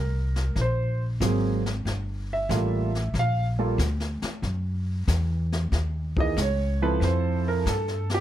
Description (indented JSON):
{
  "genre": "jazz piano trio",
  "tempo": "93 BPM",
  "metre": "4/4",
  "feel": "swing 69% on 8ths",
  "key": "unclear",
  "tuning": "A4 = 440 Hz",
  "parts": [
    { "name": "warm concert grand piano", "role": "melody", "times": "0.0-8.2 s", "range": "Fb3 to F5", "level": "-27 LUFS", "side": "right 3 dB", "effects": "none" },
    { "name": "upright bass", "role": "bass", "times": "0.0-8.2 s", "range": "G1 to G2", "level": "-25 LUFS", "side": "equal", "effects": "none" },
    { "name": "jazz brush drum kit", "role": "drums", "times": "0.4-8.2 s", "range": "brushed snare drum, hi-hat, kick drum, snare drum", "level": "-32 LUFS", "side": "left 2 dB", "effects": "none" }
  ],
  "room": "little or no reverb",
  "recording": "close, detailed microphones",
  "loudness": "-23 LUFS",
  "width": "side -12 dB against mid",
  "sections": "0.0-8.2 A section",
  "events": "grand piano solo 0.0-8.2",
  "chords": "0.0 Ab9; 1.8 Gm9; 4.4 Gb7(no3); 7.0 Fmaj7",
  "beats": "0.56 1.20 | 1.85 2.49 3.14 3.79 | 4.43 5.08 5.72 6.37 | 7.01 7.66"
}